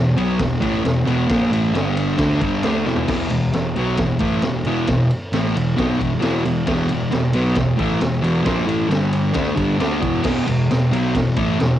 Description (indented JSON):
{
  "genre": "garage rock duo or trio",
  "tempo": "134 BPM",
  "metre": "4/4",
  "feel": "straight",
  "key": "unclear",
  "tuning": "A4 = 441 Hz",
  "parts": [
    { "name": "thick fuzz guitar", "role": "riff", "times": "0.0-11.8 s", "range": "E2 to D4", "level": "-18 LUFS", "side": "equal", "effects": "distortion, cassette tape" },
    { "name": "fuzz picked electric bass", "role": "bass", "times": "0.0-11.8 s", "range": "E1 to D2", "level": "-26 LUFS", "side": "equal", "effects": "overdrive" },
    { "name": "raw garage drum kit", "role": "drums", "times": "0.2-11.7 s", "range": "crash cymbal, kick drum, ride cymbal, snare drum, toms", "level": "-24 LUFS", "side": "equal", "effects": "cassette tape" }
  ],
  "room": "light reverb",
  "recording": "home recording on cassette",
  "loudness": "-17 LUFS",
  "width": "side -12 dB against mid",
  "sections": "0.0-3.1 A section; 3.1-11.8 B section",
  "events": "drum fill 2.9",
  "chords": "0.0 E5; 1.7 G5; 2.2 E5; 8.9 G5; 9.4 E5",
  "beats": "0.39 0.84 | 1.29 1.74 2.18 2.63 | 3.08 3.53 3.98 4.43 | 4.88 5.33 5.77 6.22 | 6.67 7.12 7.57 8.01 | 8.46 8.91 9.36 9.80 | 10.25 10.70 11.14 11.59"
}